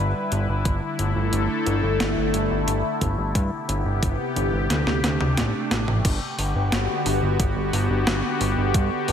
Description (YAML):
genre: synthwave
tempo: 89 BPM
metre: 4/4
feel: straight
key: G major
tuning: A4 = 442 Hz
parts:
  - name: phased analog pad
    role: sustained chords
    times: 0.0-9.1 s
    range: C3 to B4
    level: -25 LUFS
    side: left 1 dB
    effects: phaser, chorus, sidechain pumping
  - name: fat analog bass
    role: bass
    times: 0.0-9.1 s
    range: G1 to G2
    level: -24 LUFS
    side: equal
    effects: tube saturation
  - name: clean 12-bit digital drum machine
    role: drums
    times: 0.3-9.1 s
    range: crash cymbal, hi-hat, snare drum, toms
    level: -26 LUFS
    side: equal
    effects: overdrive, gated reverb
  - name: electronic kick drum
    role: drums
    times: 0.7-8.9 s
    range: none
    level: -24 LUFS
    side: equal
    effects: overdrive
room: light reverb, digital ambience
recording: none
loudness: -20 LUFS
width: side -8 dB against mid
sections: 0.0-6.0 A section; 6.0-9.1 B section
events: drum fill 4.7-6.0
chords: 0.0 G; 0.7 Dsus2/G; 3.4 Cmaj7/G; 4.7 D7sus4; 6.0 Gmaj7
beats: | 0.66 1.33 2.00 2.68 | 3.35 4.03 4.70 5.38 | 6.05 6.72 7.40 8.07 | 8.75